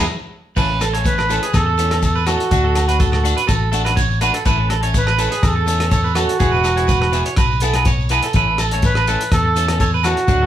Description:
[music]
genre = highlife guitar band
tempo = 123 BPM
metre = 4/4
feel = straight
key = A major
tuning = A4 = 440 Hz
[part]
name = clean electric guitar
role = accompaniment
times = 0.0-10.5 s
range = E3 to A4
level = -26 LUFS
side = left 7 dB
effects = none
[part]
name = electric guitar at the edge of break-up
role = arpeggios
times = 0.0-10.5 s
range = F#4 to C#5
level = -21 LUFS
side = right 6 dB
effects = none
[part]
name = fingered electric bass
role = bass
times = 0.0-10.5 s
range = E1 to E2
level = -20 LUFS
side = equal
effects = none
[part]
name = warm soul drum kit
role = drums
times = 0.6-10.4 s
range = crash cymbal, hi-hat, kick drum, rim click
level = -21 LUFS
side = equal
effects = none
[part]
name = shekere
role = percussion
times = 0.6-10.4 s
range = none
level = -25 LUFS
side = left 4 dB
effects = none
[part]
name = agogo bells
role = percussion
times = 0.8-10.2 s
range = none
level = -32 LUFS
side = left 3 dB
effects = none
[part]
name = breathy trumpet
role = melody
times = 1.1-10.5 s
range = F#4 to B4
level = -20 LUFS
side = right 2 dB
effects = none
[sound]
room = moderate large studio reverb, RT60 0.9 s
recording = band playing live in one room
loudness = -14 LUFS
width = side -11 dB against mid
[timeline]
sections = 0.6-10.5 A section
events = band accent 0.0-0.6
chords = 0.0 N.C.; 0.6 A; 2.5 D; 4.5 A; 6.4 E; 8.3 A

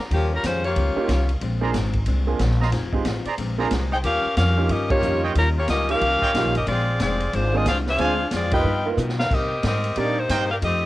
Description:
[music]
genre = jazz, big band swing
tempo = 182 BPM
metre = 4/4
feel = swing 62% on 8ths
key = unclear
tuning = A4 = 439 Hz
[part]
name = edgy saxophone section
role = melody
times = 0.1-1.3, 3.9-10.9 s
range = F3 to G5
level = -23 LUFS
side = left 1 dB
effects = cassette tape
[part]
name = vintage hollow-body jazz guitar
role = accompaniment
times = 0.1-10.8 s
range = G2 to Ab4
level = -31 LUFS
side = left 6 dB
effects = cassette tape
[part]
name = upright bass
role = bass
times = 0.1-10.9 s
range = F1 to C3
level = -23 LUFS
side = equal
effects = none
[part]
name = swinging big-band drum kit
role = drums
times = 0.1-10.7 s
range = crash cymbal, hi-hat, kick drum, ride cymbal, snare drum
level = -29 LUFS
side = equal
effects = cassette tape
[part]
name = clear concert grand piano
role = accompaniment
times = 1.0-10.2 s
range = Ab3 to A#4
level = -28 LUFS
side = right 5 dB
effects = cassette tape
[part]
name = clear trumpet section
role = stabs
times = 1.6-8.1, 10.3-10.4 s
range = Eb4 to Bb5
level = -30 LUFS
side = right 5 dB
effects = cassette tape
[sound]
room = light reverb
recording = home recording on cassette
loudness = -19 LUFS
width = side -16 dB against mid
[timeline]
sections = 0.0-10.9 A section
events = band accent 4.9, 8.5; drum fill 9.0-9.3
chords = 0.1 Eb9; 1.4 Bb9; 2.7 Fm7; 3.4 Bb9; 4.0 Eb9; 6.7 Bb9; 8.0 Dm7b5; 8.6 G7alt; 9.3 Cm7

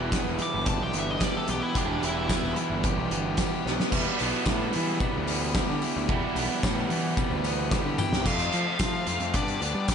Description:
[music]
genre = indie rock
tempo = 111 BPM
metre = 4/4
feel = straight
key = unclear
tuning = A4 = 440 Hz
[part]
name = crunchy overdriven guitar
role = riff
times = 0.0-8.3 s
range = E2 to G4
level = -31 LUFS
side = right 9 dB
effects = wide subtle chorus, slapback echo
[part]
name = distorted electric guitar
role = riff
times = 0.0-9.9 s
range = E3 to G4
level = -32 LUFS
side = left 8 dB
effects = overdrive
[part]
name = fuzz picked electric bass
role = bass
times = 0.0-9.9 s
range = E1 to G3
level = -32 LUFS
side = equal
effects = overdrive
[part]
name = loose indie drum kit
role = drums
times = 0.1-9.9 s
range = crash cymbal, hi-hat, kick drum, snare drum, toms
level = -29 LUFS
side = equal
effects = none
[part]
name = tambourine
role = percussion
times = 0.1-9.9 s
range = none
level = -44 LUFS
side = left 12 dB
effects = none
[part]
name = nasal lead guitar with a parked wah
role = melody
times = 0.4-2.6, 8.0-9.9 s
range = D4 to D6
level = -32 LUFS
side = equal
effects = overdrive, slapback echo
[sound]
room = light reverb, studio reverb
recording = nothing above 10.8 kHz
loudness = -24 LUFS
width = side -7 dB against mid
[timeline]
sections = 0.0-3.9 A section; 3.9-8.3 B section; 8.3-9.9 C section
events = lead electric guitar solo 0.0-3.9; drum fill 3.7, 7.7-8.3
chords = 0.0 Em; 8.3 F; 9.3 G

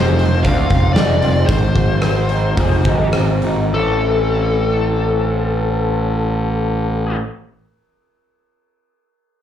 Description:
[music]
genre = quiet-loud alternative rock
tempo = 101-119 BPM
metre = 4/4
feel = straight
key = A minor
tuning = A4 = 441 Hz
[part]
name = smooth overdriven lead guitar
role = melody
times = 0.0-7.2 s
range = A4 to F5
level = -21 LUFS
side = left 4 dB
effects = slapback echo
[part]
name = electric guitar through a small old amp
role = arpeggios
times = 0.0-7.3 s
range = F2 to A4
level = -23 LUFS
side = equal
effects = ensemble chorus, slapback echo
[part]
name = fuzz picked electric bass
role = bass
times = 0.0-7.1 s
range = F1 to D2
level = -17 LUFS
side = equal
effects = overdrive
[part]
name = big rock drum kit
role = drums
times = 0.2-3.6 s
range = hi-hat, kick drum, rim click, snare drum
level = -18 LUFS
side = equal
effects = none
[sound]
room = light reverb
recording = live gig heard through the venue's PA, club reverb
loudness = -14 LUFS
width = side -10 dB against mid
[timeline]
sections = 0.0-3.7 A section; 3.7-8.5 B section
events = slowing down 0.0-3.7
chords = 0.0 Fm; 1.5 G#; 3.7 Am

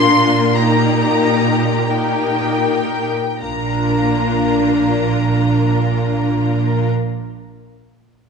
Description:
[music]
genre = classical, slow romantic movement for string orchestra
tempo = 37-49 BPM (dotted quarters)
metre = 6/8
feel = rubato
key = Bb major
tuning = A4 = 440 Hz
[part]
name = warm symphonic violin section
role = melody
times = 0.0-6.9 s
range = G5 to C6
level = -21 LUFS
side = left 3 dB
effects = none
[part]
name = warm symphonic violin section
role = second line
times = 0.0-6.9 s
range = F4 to Bb4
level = -22 LUFS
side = left 4 dB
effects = none
[part]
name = clear symphonic viola section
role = accompaniment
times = 0.0-6.9 s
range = Bb3 to Eb4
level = -18 LUFS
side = left 2 dB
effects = none
[part]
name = rich symphonic cello section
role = bass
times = 0.0-6.9 s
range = Bb2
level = -21 LUFS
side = right 5 dB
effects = none
[part]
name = warm studio double bass section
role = bass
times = 3.4-6.9 s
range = Bb1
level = -21 LUFS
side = right 4 dB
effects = none
[sound]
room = wet scoring stage reverb, RT60 1.8 s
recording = small room ambience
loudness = -14 LUFS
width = side -5 dB against mid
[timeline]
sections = 0.0-3.4 A section; 3.4-8.3 B section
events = slowing down 0.0-3.4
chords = 0.0 Bb; 0.5 Eb/Bb; 3.4 Bb

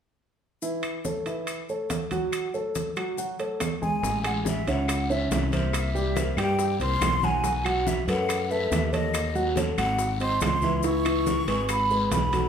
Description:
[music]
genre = Afro-Cuban jazz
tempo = 141 BPM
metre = 4/4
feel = straight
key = A major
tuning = A4 = 440 Hz
[part]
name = dark concert grand piano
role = accompaniment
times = 0.6-12.5 s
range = E3 to G#5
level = -28 LUFS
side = right 1 dB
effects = none
[part]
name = congas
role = percussion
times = 0.6-12.5 s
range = none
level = -34 LUFS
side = right 2 dB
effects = none
[part]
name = maracas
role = percussion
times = 0.6-12.5 s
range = none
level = -40 LUFS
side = left 7 dB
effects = none
[part]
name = claves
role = percussion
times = 0.8-11.9 s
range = none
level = -38 LUFS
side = left 4 dB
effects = none
[part]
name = timbales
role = percussion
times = 0.8-12.5 s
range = none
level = -35 LUFS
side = right 4 dB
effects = none
[part]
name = breathy hollow jazz flute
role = melody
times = 3.8-12.5 s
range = D#5 to C#6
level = -28 LUFS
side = equal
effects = none
[part]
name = fretless electric bass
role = bass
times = 4.0-12.5 s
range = G#1 to G2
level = -28 LUFS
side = left 1 dB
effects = none
[part]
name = bongos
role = percussion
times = 4.0-12.3 s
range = none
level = -37 LUFS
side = left 4 dB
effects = none
[part]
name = guiro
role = percussion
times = 4.0-12.5 s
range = none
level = -38 LUFS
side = left 3 dB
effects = none
[sound]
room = wet large studio reverb, RT60 0.8 s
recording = band playing live in one room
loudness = -23 LUFS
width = side -8 dB against mid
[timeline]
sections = 0.6-4.0 A section; 4.0-12.5 B section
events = none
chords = 0.6 A6; 2.3 F#madd9; 4.0 Amaj7; 5.7 C7#11; 7.4 Bsus2; 9.1 D#m7b5; 10.0 G#7; 10.8 C#m7

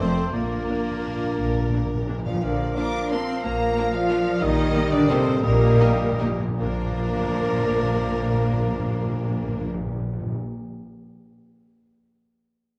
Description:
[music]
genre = classical, orchestral ballroom waltz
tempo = 146-196 BPM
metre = 3/4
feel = rubato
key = Bb major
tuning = A4 = 440 Hz
[part]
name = warm symphonic violin section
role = melody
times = 0.0-9.7 s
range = Bb4 to D6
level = -35 LUFS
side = equal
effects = none
[part]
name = bright symphonic violin section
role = second line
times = 0.0-9.7 s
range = Bb3 to Bb4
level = -43 LUFS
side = equal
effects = none
[part]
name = mellow clarinet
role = second line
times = 0.0-9.7 s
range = Bb3 to Bb4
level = -34 LUFS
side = equal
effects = none
[part]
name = mellow hollow small flute group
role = second line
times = 0.0-9.7 s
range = F4 to Bb5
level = -37 LUFS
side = equal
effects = none
[part]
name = warm oboe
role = second line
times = 0.0-9.7 s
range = C5 to F5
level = -36 LUFS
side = equal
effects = none
[part]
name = rich symphonic viola section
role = accompaniment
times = 0.0-9.7 s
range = Bb3 to Eb4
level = -35 LUFS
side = equal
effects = none
[part]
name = warm bassoon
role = accompaniment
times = 0.0-9.7 s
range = F3 to Bb3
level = -34 LUFS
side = equal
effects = none
[part]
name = mellow French horn section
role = sustained chords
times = 0.0-9.7 s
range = A3 to D5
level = -30 LUFS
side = equal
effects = none
[part]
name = rich symphonic cello section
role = bass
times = 0.0-9.7 s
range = F2 to D4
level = -31 LUFS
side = equal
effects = none
[part]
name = rich symphonic double bass section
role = bass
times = 0.0-9.7 s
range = F1 to Bb1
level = -30 LUFS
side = equal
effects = none
[part]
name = timpani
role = percussion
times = 0.3-2.4, 4.4-10.4 s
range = Bb2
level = -31 LUFS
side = equal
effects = none
[sound]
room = wet recital hall reverb, RT60 1.6 s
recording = dark, warm production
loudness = -23 LUFS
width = mono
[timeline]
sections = 0.0-2.4 A section; 2.4-6.6 B section; 6.6-8.9 C section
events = timpani fill 0.3-2.4, 4.4-6.6; slowing down 3.9-6.6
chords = 0.0 F; 0.3 Bb; 4.4 Eb/Bb; 6.6 Bb

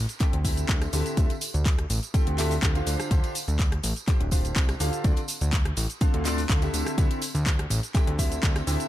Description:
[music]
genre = piano house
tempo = 124 BPM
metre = 4/4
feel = straight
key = unclear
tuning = A4 = 444 Hz
[part]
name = fat analog bass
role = bass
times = 0.0-8.8 s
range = D1 to D2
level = -27 LUFS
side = equal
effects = sidechain pumping
[part]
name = house drum kit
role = drums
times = 0.1-8.9 s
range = handclaps, hi-hat, rim click, shaker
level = -32 LUFS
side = left 1 dB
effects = overdrive
[part]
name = tambourine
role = percussion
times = 0.1-8.9 s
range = none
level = -39 LUFS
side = right 8 dB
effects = none
[part]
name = clear concert grand piano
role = riff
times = 0.2-8.9 s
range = D3 to G5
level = -32 LUFS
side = equal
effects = analog chorus, sidechain pumping, analog delay
[part]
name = electronic kick drum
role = drums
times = 0.2-8.5 s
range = none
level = -23 LUFS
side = equal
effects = overdrive
[sound]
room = little or no reverb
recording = none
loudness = -23 LUFS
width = side -14 dB against mid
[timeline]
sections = 0.0-8.9 A section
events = none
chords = 0.0 Am7; 1.2 Fmaj9; 2.9 G7sus4; 5.0 Dm7; 6.7 Am7

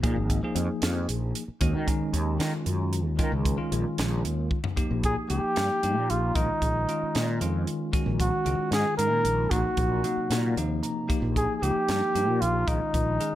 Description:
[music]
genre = electric jazz fusion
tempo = 76 BPM (dotted quarters)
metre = 6/8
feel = straight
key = unclear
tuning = A4 = 439 Hz
[part]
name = bell-like tine electric piano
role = accompaniment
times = 0.0-13.3 s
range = C3 to Bb5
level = -31 LUFS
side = left 1 dB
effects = fast stereo tremolo
[part]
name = fretless electric bass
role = bass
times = 0.0-13.3 s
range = Ab1 to Eb3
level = -28 LUFS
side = equal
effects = ensemble chorus
[part]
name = crisp fusion drum kit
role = drums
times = 0.0-13.3 s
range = hi-hat, kick drum, snare drum, toms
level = -30 LUFS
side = equal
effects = none
[part]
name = trumpet with bucket mute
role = melody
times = 5.1-13.3 s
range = Eb4 to Bb4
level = -26 LUFS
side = equal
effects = slapback echo
[sound]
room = light reverb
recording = none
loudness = -24 LUFS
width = side -13 dB against mid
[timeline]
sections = 0.0-4.8 A section; 4.8-13.3 B section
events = drum fill 4.5; tine electric piano fill 10.3-11.1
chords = 0.0 Bb7(no3); 1.6 Ebm11; 4.8 Ebadd9/Bb; 6.4 Bbm7; 7.9 Ebm9/Bb; 9.5 Ebm69/Bb; 11.1 Ebadd9/Bb; 12.7 Bbm7

